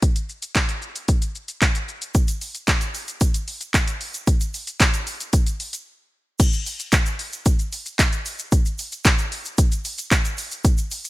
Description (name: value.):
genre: pop.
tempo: 113 BPM.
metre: 4/4.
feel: straight.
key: none.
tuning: none.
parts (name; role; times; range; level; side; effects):
house drum kit; drums; 0.0-11.1 s; crash cymbal, handclaps, hi-hat, kick drum, shaker; -19 LUFS; equal; none.
egg shaker; percussion; 2.1-11.1 s; none; -35 LUFS; right 5 dB; none.
room: little or no reverb.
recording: bright 1980s-style digital production.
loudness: -20 LUFS.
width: side -19 dB against mid.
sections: 0.0-6.4 A section; 6.4-11.1 B section.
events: break 5.9-6.4.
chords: none.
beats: | 0.03 0.56 1.09 1.62 | 2.15 2.68 3.21 3.74 | 4.27 4.80 5.33 5.87 | 6.40 6.93 7.46 7.99 | 8.52 9.05 9.58 10.11 | 10.64.